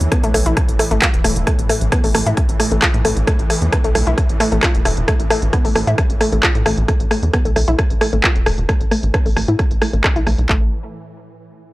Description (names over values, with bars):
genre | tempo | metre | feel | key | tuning
driving peak-time techno | 133 BPM | 4/4 | straight | unclear | A4 = 440 Hz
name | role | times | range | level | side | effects
tight sequencer bass | bass | 0.0-10.7 s | E1 to A2 | -19 LUFS | equal | sidechain pumping
swarming drone | drone | 0.0-10.5 s | A2 to E3 | -28 LUFS | equal | built-in reverb, sidechain pumping
techno drum kit | drums | 0.0-10.5 s | handclaps, hi-hat, rim click | -19 LUFS | equal | low-pass filter on snare, sidechain pumping on hats, low-pass filter on hats
analog pluck | riff | 0.1-10.7 s | A3 to F4 | -21 LUFS | left 1 dB | chorus, overdrive, sidechain pumping, analog delay
techno drum kit | drums | 0.1-10.6 s | handclaps, kick drum | -18 LUFS | equal | none
room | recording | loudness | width
light reverb, digital ambience | dry, gritty hardware recording, transformer saturation | -14 LUFS | side -19 dB against mid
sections
0.0-10.5 A section; 10.5-11.7 B section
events
filter sweep on synth arpeggio sound 0.0-10.5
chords
0.0 A5; 10.5 N.C.